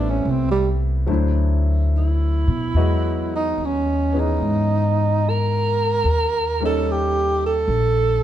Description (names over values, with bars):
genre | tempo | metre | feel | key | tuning
jazz ballad | 73 BPM | 4/4 | swing 69% on 8ths | unclear | A4 = 441 Hz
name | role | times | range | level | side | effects
breathy tenor saxophone | melody | 0.0-8.2 s | G3 to A#4 | -21 LUFS | right 3 dB | none
warm baby grand piano | accompaniment | 0.0-8.2 s | E3 to D#5 | -27 LUFS | left 3 dB | none
upright bass | bass | 0.0-8.2 s | A1 to B2 | -20 LUFS | left 1 dB | none
room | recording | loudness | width
moderate studio reverb, RT60 0.9 s | heard from further back in the room | -18 LUFS | side -11 dB against mid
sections
0.0-8.2 A section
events
tenor saxophone solo 0.0-8.2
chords
0.0 Am7; 1.1 D9; 2.8 Emaj9; 6.1 D#7#11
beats
0.25 1.08 1.92 | 2.76 3.58 4.41 5.24 | 6.06 6.87 7.69